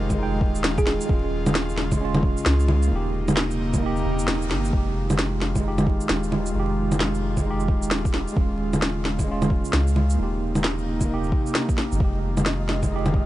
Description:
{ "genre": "future garage", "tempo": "132 BPM", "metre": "4/4", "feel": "swing 62% on 16ths", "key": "F minor", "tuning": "A4 = 441 Hz", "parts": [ { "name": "tine electric piano", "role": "accompaniment", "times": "0.0-13.3 s", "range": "Ab3 to G5", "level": "-29 LUFS", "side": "right 3 dB", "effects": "medium stereo tremolo, sidechain pumping, tape echo" }, { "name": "airy breathy pad", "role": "sustained chords", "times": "0.0-13.3 s", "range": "C3 to F4", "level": "-30 LUFS", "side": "left 1 dB", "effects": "chorus, sidechain pumping" }, { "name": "soft dub sub bass", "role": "bass", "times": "0.0-13.3 s", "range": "Eb1 to Db2", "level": "-26 LUFS", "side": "equal", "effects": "tube saturation, sidechain pumping" }, { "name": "electronic bongos, shaker and snare drum", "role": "drums", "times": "0.1-13.1 s", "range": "none", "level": "-25 LUFS", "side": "equal", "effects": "none" }, { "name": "electronic kick drum", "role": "drums", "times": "0.1-13.3 s", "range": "none", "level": "-23 LUFS", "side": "equal", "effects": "none" }, { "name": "thumb-piano-like synth pluck", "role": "melody", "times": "0.8-1.1 s", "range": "Ab4", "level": "-32 LUFS", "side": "right 2 dB", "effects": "chorus, analog delay" }, { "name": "flickering grainy texture", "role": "texture", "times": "12.2-13.3 s", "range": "Eb5", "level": "-35 LUFS", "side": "right 1 dB", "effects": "built-in reverb" } ], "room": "little or no reverb", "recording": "vinyl crackle, nothing above 10.7 kHz", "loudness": "-20 LUFS", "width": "side -15 dB against mid", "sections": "0.0-4.7 A section; 4.7-13.3 B section", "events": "kick drops out 3.8-4.7; band accent 4.3", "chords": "0.0 Fm7; 1.1 Eb9sus4; 2.9 Cm7/Eb; 4.7 Fm7; 8.4 Eb9sus4; 10.2 Cm7/Eb; 12.0 Fm7" }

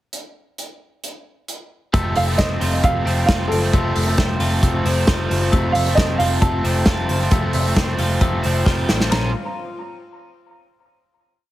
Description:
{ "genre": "jangly indie pop", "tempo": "134 BPM", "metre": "4/4", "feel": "straight", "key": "unclear", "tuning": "A4 = 438 Hz", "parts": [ { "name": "modern studio drum kit", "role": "drums", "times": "0.1-9.2 s", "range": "hi-hat, kick drum, ride cymbal, snare drum", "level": "-20 LUFS", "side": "equal", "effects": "none" }, { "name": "crunchy overdriven guitar", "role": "accompaniment", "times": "1.9-9.3 s", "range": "F2 to C5", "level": "-25 LUFS", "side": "right 4 dB", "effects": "none" }, { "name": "twelve-string electric guitar", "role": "arpeggios", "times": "1.9-9.8 s", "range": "F3 to F4", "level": "-25 LUFS", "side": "left 4 dB", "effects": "spring reverb, plate reverb, tape echo" }, { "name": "vintage muted picked electric bass", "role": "bass", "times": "1.9-9.3 s", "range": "F1 to Bb1", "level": "-22 LUFS", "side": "equal", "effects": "none" }, { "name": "warm upright piano", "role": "melody", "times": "2.2-9.3 s", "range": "A4 to Bb5", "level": "-24 LUFS", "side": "right 2 dB", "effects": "plate reverb, tape echo" } ], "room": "light reverb", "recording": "heavily compressed radio sound, multiband compression", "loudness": "-16 LUFS", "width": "side -15 dB against mid", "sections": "0.1-1.9 pickup bar; 1.9-9.1 verse; 9.1-10.9 final chord", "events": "drum fill 8.7-9.1", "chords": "0.1 N.C.; 1.9 F; 9.1 Bbmadd9" }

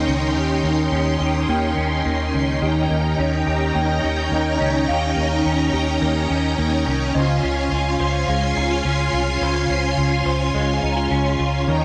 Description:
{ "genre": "dream pop", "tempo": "106 BPM", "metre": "4/4", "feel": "straight", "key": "unclear", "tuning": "A4 = 440 Hz", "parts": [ { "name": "string machine, violins", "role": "sustained chords", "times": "0.0-11.8 s", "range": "Db4 to C6", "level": "-23 LUFS", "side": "equal", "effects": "ensemble chorus" }, { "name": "semi-hollow electric guitar", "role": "arpeggios", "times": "0.0-11.8 s", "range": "Db3 to C5", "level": "-26 LUFS", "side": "equal", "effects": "ensemble chorus, tape echo" }, { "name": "vintage muted fingered electric bass", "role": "bass", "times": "0.0-11.8 s", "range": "C2 to Eb2", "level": "-26 LUFS", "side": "equal", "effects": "tube saturation" }, { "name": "worn celesta", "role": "texture", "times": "1.5-11.8 s", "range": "Eb5 to Bb5", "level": "-34 LUFS", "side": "equal", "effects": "none" } ], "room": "light reverb, digital ambience", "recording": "dry, gritty hardware recording", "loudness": "-20 LUFS", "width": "mono", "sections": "0.0-2.6 A section; 2.6-11.8 B section", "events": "none", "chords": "0.0 Eb7; 7.1 Dbmaj7" }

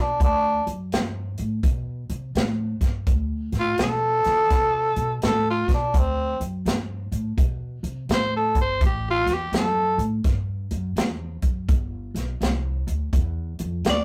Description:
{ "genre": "electric blues shuffle", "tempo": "84 BPM", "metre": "4/4", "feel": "swing 64% on 8ths", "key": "D mixolydian", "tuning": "A4 = 440 Hz", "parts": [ { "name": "growling tenor saxophone", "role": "melody", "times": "0.0-14.0 s", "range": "C4 to D5", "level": "-24 LUFS", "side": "equal", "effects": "none" }, { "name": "upright bass", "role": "bass", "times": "0.0-14.0 s", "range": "G1 to D3", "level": "-30 LUFS", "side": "equal", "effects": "none" }, { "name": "natural country drum kit", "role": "drums", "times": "0.2-14.0 s", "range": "hi-hat, kick drum, snare drum", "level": "-26 LUFS", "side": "equal", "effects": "none" } ], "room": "moderate small room ambience, RT60 0.5 s", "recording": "rough rehearsal-room recording, warm saturation", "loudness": "-24 LUFS", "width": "mono", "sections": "0.0-14.0 A section", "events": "none", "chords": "0.0 D7(no3); 8.8 A5; 11.7 G7" }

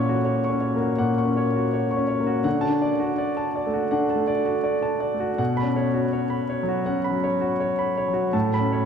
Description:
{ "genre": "neoclassical minimalist piano", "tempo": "82 BPM", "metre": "4/4", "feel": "rubato", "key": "B minor", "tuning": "A4 = 439 Hz", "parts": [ { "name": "clear grand piano", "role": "solo", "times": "0.0-8.9 s", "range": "A2 to C#6", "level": "-21 LUFS", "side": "equal", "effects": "none" } ], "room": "wet cathedral reverb, RT60 5.8 s", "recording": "in a vast, echoing space", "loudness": "-21 LUFS", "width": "side -7 dB against mid", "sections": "0.0-8.9 A section", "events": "none", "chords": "0.0 F#/A#; 2.5 D; 5.4 Bsus2; 8.3 Aadd9" }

